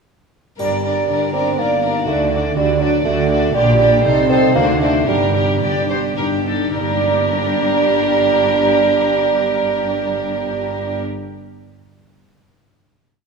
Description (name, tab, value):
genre	cinematic, playful, whimsical film cue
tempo	103-123 BPM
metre	3/4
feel	straight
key	G minor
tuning	A4 = 441 Hz
part	warm chamber violin section	melody	0.6-11.0 s	A4 to D5	-24 LUFS	left 4 dB	none
part	warm chamber violin section	second line	0.6-11.0 s	F#4 to Bb4	-25 LUFS	left 3 dB	none
part	dark bassoon	accompaniment	0.6-11.0 s	F#3 to C4	-18 LUFS	right 6 dB	none
part	warm chamber viola section	accompaniment	0.6-11.0 s	D4 to Eb4	-24 LUFS	equal	none
part	concert harp	arpeggios	0.6-11.9 s	G2 to D5	-23 LUFS	left 6 dB	none
part	dark studio cello section	bass	0.6-11.0 s	G2 to D3	-24 LUFS	right 4 dB	none
part	rich symphonic double bass section	bass	0.6-11.0 s	G1 to D2	-25 LUFS	right 3 dB	none
part	triangle	percussion	0.6-1.5 s	none	-44 LUFS	left 2 dB	none
room	moderate scoring stage reverb, RT60 1.7 s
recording	none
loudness	-14 LUFS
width	side -4 dB against mid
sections	0.6-6.8 A section; 6.8-10.2 final chord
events	slowing down 2.8-6.8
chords	0.6 Gm; 2.1 D; 3.5 Gm/Bb; 4.0 Adim/C; 4.6 D7; 5.1 Gm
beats	| 0.60 1.09 1.58 | 2.08 2.57 3.06 | 3.55 4.04 4.55 | 5.08 5.62 6.18 | 6.76 7.33 7.92 | 8.50 9.08 9.66